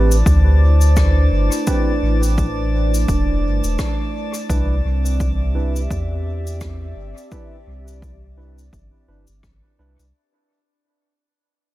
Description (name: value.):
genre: ambient dub.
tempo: 85 BPM.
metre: 4/4.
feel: swing 58% on 16ths.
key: unclear.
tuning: A4 = 440 Hz.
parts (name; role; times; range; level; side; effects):
warbly tape-like pad; sustained chords; 0.0-10.1 s; A3 to E5; -29 LUFS; equal; chorus, built-in reverb.
overdriven tine electric piano; stabs; 0.0-10.0 s; C4 to B4; -29 LUFS; right 4 dB; lush chorus, low-pass filter, dub echo.
warm sub bass; bass; 0.0-10.1 s; E1 to E2; -16 LUFS; equal; none.
drifting glass-harmonics texture; texture; 0.0-10.2 s; D4 to D5; -26 LUFS; right 1 dB; chorus, built-in reverb.
cabasa and rim click; drums; 0.1-10.1 s; none; -31 LUFS; left 3 dB; dub echo.
electronic kick drum; drums; 0.3-9.6 s; none; -21 LUFS; equal; none.
room: studio ambience.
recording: none.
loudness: -15 LUFS.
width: side -16 dB against mid.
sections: 0.0-10.1 A section.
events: fade-out 0.0-10.1.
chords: 0.0 Am7; 4.5 Cmaj7.